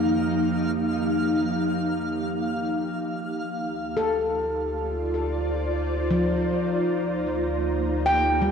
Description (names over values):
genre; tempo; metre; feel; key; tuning
ambient; 51 BPM; 3/4; straight; unclear; A4 = 440 Hz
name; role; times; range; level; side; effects
ethereal airy pad; sustained chords; 0.0-8.5 s; F3 to D5; -25 LUFS; equal; ensemble chorus, built-in reverb
handpan; arpeggios; 0.0-8.5 s; F3 to G5; -26 LUFS; left 2 dB; ping-pong delay
warm sub bass; bass; 0.0-8.5 s; D2 to F2; -32 LUFS; right 1 dB; none
organ-like drone; drone; 0.0-8.5 s; Eb3 to Eb4; -36 LUFS; left 1 dB; ensemble chorus, built-in reverb
twinkling granular texture; texture; 0.0-3.4 s; F5; -35 LUFS; equal; built-in reverb
room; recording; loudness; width
wet cathedral reverb, RT60 6.3 s; worn, warbling old tape, cassette tape, warbly pitch drift; -23 LUFS; side -6 dB against mid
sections
0.0-3.3 A section; 3.3-8.5 B section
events
fade-out on sub bass 0.0-3.3; fade-in on synth drone 3.3-8.5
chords
0.0 F9sus4; 3.3 Dm7; 6.9 Gm7/D